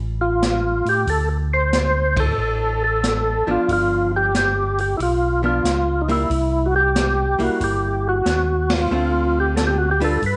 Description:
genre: soul jazz organ trio.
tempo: 92 BPM.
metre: 4/4.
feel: swing 67% on 8ths.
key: unclear.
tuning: A4 = 440 Hz.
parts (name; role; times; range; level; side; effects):
mellow tonewheel organ; bass; 0.0-10.4 s; G1 to A2; -25 LUFS; equal; overdrive, chorus vibrato, slow rotary speaker.
percussive tonewheel organ; melody; 0.2-10.4 s; Eb4 to C5; -22 LUFS; equal; slow rotary speaker, overdrive, chorus vibrato, slapback echo.
open jazz drum kit; drums; 0.4-10.4 s; hi-hat, kick drum, ride cymbal, snare drum; -29 LUFS; equal; none.
archtop guitar, miked and amplified; accompaniment; 3.5-10.2 s; D3 to B4; -28 LUFS; equal; none.
room: light reverb, small room ambience.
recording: nothing above 10.3 kHz.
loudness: -20 LUFS.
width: mono.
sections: 0.0-10.4 A section.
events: band accent 2.1-2.4, 8.6-8.9.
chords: 0.0 Fadd9/A; 1.1 D7(no3); 3.7 G7; 6.3 C7; 8.9 Dm7.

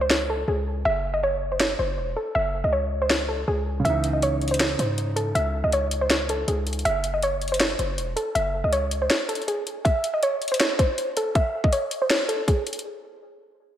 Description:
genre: hip hop, trap.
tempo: 160 BPM.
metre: 4/4.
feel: half-time.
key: unclear.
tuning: A4 = 440 Hz.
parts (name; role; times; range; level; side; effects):
soft round pluck; melody; 0.0-12.6 s; G#4 to E5; -24 LUFS; equal; chorus, low-pass filter, analog delay.
hard-hitting 808-style bass; bass; 0.0-9.1 s; E1 to G#2; -28 LUFS; equal; none.
trap drum kit; drums; 0.1-12.8 s; hi-hat, kick drum, snare drum; -25 LUFS; equal; none.
dark concert grand piano; accompaniment; 3.8-6.9 s; C#3 to D#4; -30 LUFS; right 3 dB; none.
room: moderate plate reverb, RT60 1.8 s, digital ambience.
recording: dreamy mix soaked in reverb.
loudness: -21 LUFS.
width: side -10 dB against mid.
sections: 0.0-9.9 A section; 9.9-12.9 B section.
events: break 0.0-3.9; kick muted 9.1-9.9; filter sweep on synth pluck 9.9-12.9.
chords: 0.0 C#5; 0.9 F#5; 3.9 C#madd9; 6.9 F#5; 9.9 N.C..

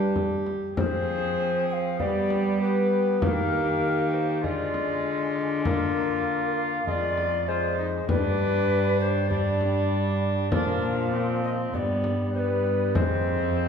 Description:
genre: classical, renaissance-style consort dance.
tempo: 99 BPM.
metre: 4/4.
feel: straight.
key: unclear.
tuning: A4 = 440 Hz.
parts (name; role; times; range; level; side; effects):
mellow alto recorder; melody; 0.0-13.7 s; Bb4 to G5; -28 LUFS; left 3 dB; none.
rich viola; second line; 0.0-13.7 s; B3 to Ab4; -31 LUFS; right 1 dB; none.
warm bassoon; accompaniment; 0.0-13.7 s; F3 to D4; -30 LUFS; equal; none.
rich cello; bass; 0.0-13.7 s; F2 to G3; -28 LUFS; equal; none.
frame drum; percussion; 0.2-13.2 s; none; -30 LUFS; left 2 dB; none.
room: wet recital hall reverb, RT60 1.6 s.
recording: heard from further back in the room.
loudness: -23 LUFS.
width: side -6 dB against mid.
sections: 0.8-13.7 A section.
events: none.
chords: 0.0 G; 0.8 Fm; 2.0 G; 3.2 Eb; 4.4 Ddim; 5.7 Bb/D; 6.9 Fm; 8.1 G; 10.5 Bb; 11.7 G; 13.0 Fm.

